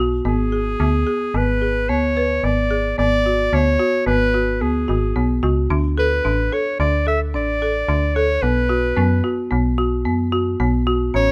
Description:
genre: contemporary instrumental, chamber music in an uneven meter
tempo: 110 BPM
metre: 5/4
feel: straight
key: B dorian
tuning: A4 = 438 Hz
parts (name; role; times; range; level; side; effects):
- folk marimba with medium mallets; arpeggios; 0.0-11.3 s; B3 to B4; -24 LUFS; equal; none
- metallic FM bass; bass; 0.0-11.3 s; G#1 to F#2; -23 LUFS; equal; none
- clear clarinet; melody; 0.3-11.3 s; G#4 to E5; -23 LUFS; equal; none
room: little or no reverb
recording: close, detailed microphones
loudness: -19 LUFS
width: mono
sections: 0.0-11.3 A section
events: none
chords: 0.3 G#m7b5; 5.7 D5; 8.4 B5

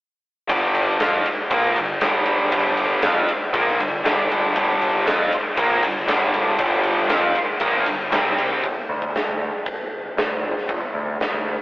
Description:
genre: classic rock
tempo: 118 BPM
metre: 4/4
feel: straight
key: unclear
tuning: A4 = 442 Hz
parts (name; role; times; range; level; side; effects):
- distorted electric guitar; riff; 0.5-8.6 s; G2 to F4; -29 LUFS; equal; none
- tight distorted guitar; riff; 0.5-8.6 s; G2 to F4; -24 LUFS; left 2 dB; distortion
- tight distorted guitar; riff; 0.5-8.6 s; G2 to F4; -23 LUFS; right 1 dB; distortion
- growling picked electric bass; bass; 0.5-11.6 s; G1 to F2; -25 LUFS; equal; overdrive
- huge arena drum kit; drums; 0.5-11.3 s; hi-hat, kick drum, ride cymbal, snare drum; -22 LUFS; equal; none
room: moderate stone room reverb, RT60 1.1 s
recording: rough rehearsal-room recording, telephone sound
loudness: -18 LUFS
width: side -18 dB against mid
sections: 0.5-8.6 A section; 8.6-11.6 B section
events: none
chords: 0.5 G5; 8.1 C5; 8.6 N.C.

